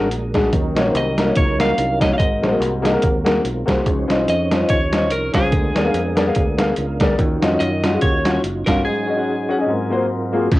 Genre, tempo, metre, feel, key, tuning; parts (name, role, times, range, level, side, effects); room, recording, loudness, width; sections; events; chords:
uptempo gospel; 144 BPM; 4/4; swing 56% on 8ths; A4 = 440 Hz
clean electric guitar; melody; 0.0-10.1 s; Ab4 to F5; -23 LUFS; equal; cassette tape, plate reverb
warm upright piano; accompaniment; 0.0-10.6 s; Ab2 to Gb5; -20 LUFS; left 2 dB; plate reverb
mellow tonewheel organ; sustained chords; 0.0-10.5 s; Ab2 to Ab5; -26 LUFS; right 2 dB; slow rotary speaker, chorus vibrato
fingered electric bass; bass; 0.0-10.6 s; Gb1 to Gb2; -24 LUFS; equal
boom bap sampler-style drum kit; drums; 0.1-10.6 s; crash cymbal, hi-hat, kick drum, ride cymbal, snare drum; -20 LUFS; right 1 dB; cassette tape
moderate booth ambience, RT60 0.2 s; home recording on cassette; -16 LUFS; side -17 dB against mid
0.0-10.5 A section
tonewheel organ fill 6.4-7.2; break 8.9-10.5
0.0 Bb7b13; 0.5 Ebm7; 2.2 Ab9; 3.9 Dbmaj9; 5.5 Bb7b9/D; 7.2 Ebm9; 8.9 Ab7sus4; 9.7 Ab13